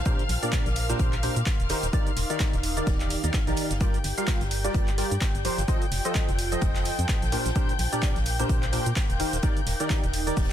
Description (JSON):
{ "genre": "piano house", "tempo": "128 BPM", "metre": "4/4", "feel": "swing 57% on 16ths", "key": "unclear", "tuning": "A4 = 440 Hz", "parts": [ { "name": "muted studio string section", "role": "sustained chords", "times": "0.0-10.5 s", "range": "F5 to G6", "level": "-35 LUFS", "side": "left 3 dB", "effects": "sidechain pumping" }, { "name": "organ-like FM bass", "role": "bass", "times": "0.0-10.5 s", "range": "Eb1 to Bb2", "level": "-29 LUFS", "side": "equal", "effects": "sidechain pumping" }, { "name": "airy breathy pad", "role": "texture", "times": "0.0-10.5 s", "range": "Eb4 to D6", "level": "-36 LUFS", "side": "right 1 dB", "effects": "chorus, sidechain pumping" }, { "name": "percussive organ stab", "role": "riff", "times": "0.1-10.5 s", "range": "Bb2 to F5", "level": "-30 LUFS", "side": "equal", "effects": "ensemble chorus, sidechain pumping, dub echo" }, { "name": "electronic kick drum", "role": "drums", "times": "0.1-10.5 s", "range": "none", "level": "-26 LUFS", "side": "equal", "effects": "none" }, { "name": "open jazz drum kit", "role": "drums", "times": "0.1-10.5 s", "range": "hi-hat, snare drum", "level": "-42 LUFS", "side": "left 4 dB", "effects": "none" }, { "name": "punchy analog drum machine", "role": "drums", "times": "0.1-10.5 s", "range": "cabasa, handclaps, hi-hat", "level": "-33 LUFS", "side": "right 2 dB", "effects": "none" } ], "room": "little or no reverb", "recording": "dense, heavily limited modern master", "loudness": "-23 LUFS", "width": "side -10 dB against mid", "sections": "0.0-10.5 A section", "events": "none", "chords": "0.0 Bb69; 3.8 Gm7; 5.7 F7; 7.3 Bb69" }